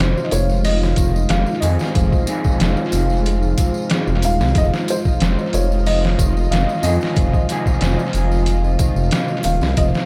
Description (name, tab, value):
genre	trip hop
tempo	92 BPM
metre	4/4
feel	straight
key	F minor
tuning	A4 = 439 Hz
part	felt-muted upright piano	melody	0.0-9.8 s	C5 to F5	-27 LUFS	equal	tape echo
part	electric guitar at the edge of break-up	accompaniment	0.0-10.1 s	C3 to Ab4	-30 LUFS	equal	tremolo, vintage 12-bit sampler grit, tape echo
part	dark analog pad	sustained chords	0.0-10.1 s	Ab3 to Ab5	-28 LUFS	equal	chorus
part	concert harp	arpeggios	0.0-10.1 s	C3 to F4	-29 LUFS	equal	tape echo
part	dark detuned saw bass	bass	0.0-9.9 s	Eb1 to F2	-21 LUFS	equal	none
part	trip hop sampler-style drum kit	drums	0.0-10.1 s	hi-hat, kick drum, snare drum	-22 LUFS	equal	overdrive, tape echo
part	tambourine and triangle	percussion	0.0-10.1 s	none	-37 LUFS	equal	tape echo
part	bowed-like drone	texture	0.4-10.1 s	F4	-36 LUFS	equal	none
room	light reverb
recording	echo-heavy mix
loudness	-18 LUFS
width	mono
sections	0.0-10.1 A section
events	none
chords	0.0 Fm7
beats	0.64 1.29 | 1.95 2.60 3.25 3.90 | 4.56 5.21 5.86 6.51 | 7.17 7.82 8.47 9.12 | 9.77